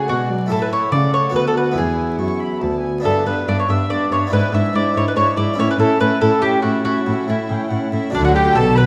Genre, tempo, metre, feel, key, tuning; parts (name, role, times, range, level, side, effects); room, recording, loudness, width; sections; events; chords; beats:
classical, baroque-style concerto movement with solo episodes; 142 BPM; 3/4; straight; A4 = 439 Hz
mandolin; melody; 0.0-8.9 s; D4 to E5; -22 LUFS; equal
warm chamber violin section; melody; 0.0-8.9 s; D5 to C#6; -32 LUFS; equal
warm chamber violin section; second line; 0.0-8.8 s; D4 to B4; -28 LUFS; equal
harpsichord; accompaniment; 0.0-8.9 s; D2 to A4; -26 LUFS; equal
warm studio viola section; accompaniment; 0.0-8.9 s; F#3 to D4; -28 LUFS; equal
rich chamber cello section; bass; 0.0-8.9 s; D2 to D3; -24 LUFS; equal
warm studio double bass section; bass; 8.1-8.9 s; B1 to D2; -22 LUFS; equal
moderate concert hall reverb, RT60 2.1 s; dark, warm production, vinyl crackle; -18 LUFS; mono
0.0-8.1 A section
0.0 D; 0.5 A; 1.3 Bm/D; 1.8 E; 3.1 Em7/G; 4.3 E7/G#; 5.6 A; 8.1 D
0.09 | 0.51 0.92 1.34 | 1.77 2.20 2.62 | 3.05 3.48 3.90 | 4.32 4.74 5.16 | 5.58 6.00 6.42 | 6.85 7.28 7.71 | 8.14 8.56